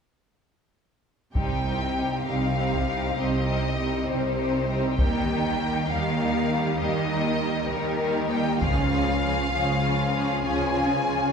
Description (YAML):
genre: cinematic, epic orchestral film score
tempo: 66 BPM (dotted quarters)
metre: 6/8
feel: straight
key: C phrygian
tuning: A4 = 443 Hz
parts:
  - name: rich symphonic cello section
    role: bass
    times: 1.3-11.2 s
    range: C3 to Eb3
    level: -29 LUFS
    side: right 2 dB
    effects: none
  - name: warm symphonic violin section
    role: melody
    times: 1.4-11.3 s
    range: Bb4 to Ab5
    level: -28 LUFS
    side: left 3 dB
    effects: none
  - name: clear symphonic violin section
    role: second line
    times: 1.4-11.3 s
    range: Eb4 to Ab4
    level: -32 LUFS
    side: left 2 dB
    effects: none
  - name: warm symphonic viola section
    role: accompaniment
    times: 1.4-11.3 s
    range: F3 to Db4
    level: -30 LUFS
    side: equal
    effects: none
  - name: clear symphonic double bass section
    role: bass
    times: 1.4-11.2 s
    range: C2 to Eb2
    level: -29 LUFS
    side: right 2 dB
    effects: none
  - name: taiko ensemble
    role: drums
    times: 1.4-9.8 s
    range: none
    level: -27 LUFS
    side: left 1 dB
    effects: none
room: wet scoring stage reverb, RT60 1.7 s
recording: recorded in a church or concert hall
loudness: -22 LUFS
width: side -6 dB against mid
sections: 1.4-11.3 A section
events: none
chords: 1.4 Cm; 5.0 Eb; 8.6 Db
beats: | 1.35 2.26 | 3.17 4.08 | 4.99 5.90 | 6.80 7.71 | 8.62 9.53 | 10.44